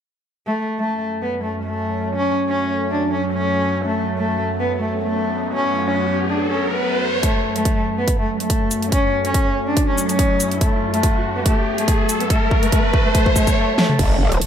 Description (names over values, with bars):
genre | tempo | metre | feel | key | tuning
heavy wobble dubstep | 142 BPM | 4/4 | swing 54% on 16ths, half-time | F# minor | A4 = 440 Hz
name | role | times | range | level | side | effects
warm cello | melody | 0.5-14.0 s | A3 to D4 | -21 LUFS | left 1 dB | ping-pong delay
evolving wavetable pad | sustained chords | 1.1-14.5 s | F#2 to C#5 | -25 LUFS | right 1 dB | phaser, built-in reverb, sidechain pumping
riser and impact | sound effects | 4.9-14.5 s | none | -25 LUFS | equal | none
dubstep drum kit | drums | 7.2-14.5 s | crash cymbal, hi-hat, shaker, snare drum, toms | -23 LUFS | equal | overdrive
electronic kick drum | drums | 7.2-14.1 s | none | -18 LUFS | equal | none
growl bass | bass | 14.0-14.4 s | F#1 | -18 LUFS | equal | chorus, overdrive
room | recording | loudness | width
moderate digital room reverb, RT60 1.1 s | none | -17 LUFS | side -8 dB against mid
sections
0.5-7.2 A section; 7.2-14.0 B section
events
riser 4.9-7.2, 7.2-13.6; build-up 7.2-14.0; filter sweep on ambient pad 7.2-14.0; drum fill 10.6-13.6, 13.8; impact 14.0-14.5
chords
0.5 F#m